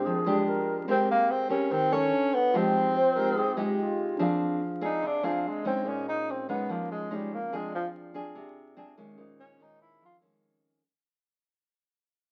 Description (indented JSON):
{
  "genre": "bossa nova",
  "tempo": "144 BPM",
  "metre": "4/4",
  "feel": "straight",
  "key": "F minor",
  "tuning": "A4 = 441 Hz",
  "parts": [
    { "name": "breathy tenor saxophone", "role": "melody", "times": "0.0-10.2 s", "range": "F3 to F4", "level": "-30 LUFS", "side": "equal", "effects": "none" },
    { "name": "hollow bansuri", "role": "second line", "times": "0.0-4.2 s", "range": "F4 to C5", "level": "-32 LUFS", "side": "equal", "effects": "none" },
    { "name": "nylon-string guitar", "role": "accompaniment", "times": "0.0-10.8 s", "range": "F2 to Db5", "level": "-33 LUFS", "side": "equal", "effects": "none" },
    { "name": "tine electric piano", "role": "accompaniment", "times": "0.0-10.9 s", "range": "C4 to A5", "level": "-40 LUFS", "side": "equal", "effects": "none" }
  ],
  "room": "moderate studio reverb, RT60 0.7 s",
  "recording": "very old 78 rpm record, vinyl crackle",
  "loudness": "-28 LUFS",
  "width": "mono",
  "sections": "0.0-4.2 A section; 4.2-10.8 B section",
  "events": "fade-out 4.2-10.8; tenor saxophone solo 4.2-10.8",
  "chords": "0.0 Bb13; 0.9 Abmaj9; 2.1 Bm9; 2.5 Fm9; 4.2 Fm6; 5.9 Bbm11; 7.5 Fm6; 9.2 Bbm11",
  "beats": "0.05 0.46 | 0.88 1.29 1.70 2.12 | 2.53 2.95 3.36 3.78 | 4.19 4.61 5.02 5.44 | 5.85 6.27 6.68 7.10 | 7.51 7.93 8.34 8.76 | 9.18 9.59 10.01 10.42"
}